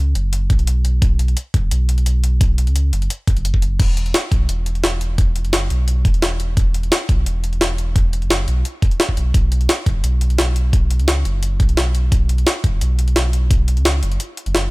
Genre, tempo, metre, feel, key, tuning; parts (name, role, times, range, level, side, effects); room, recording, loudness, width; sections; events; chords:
liquid drum and bass; 173 BPM; 4/4; straight; A4 = 442 Hz
sub bass with octave; bass; 0.0-14.7 s; E1 to C#2; -17 LUFS; equal
jungle sampler-style drum kit; drums; 0.2-14.6 s; crash cymbal, hi-hat, snare drum; -21 LUFS; equal
electronic kick drum; drums; 0.5-13.6 s; -16 LUFS; equal
little or no reverb; -15 LUFS; side -23 dB against mid
0.0-14.7 A section
break 14.2-14.7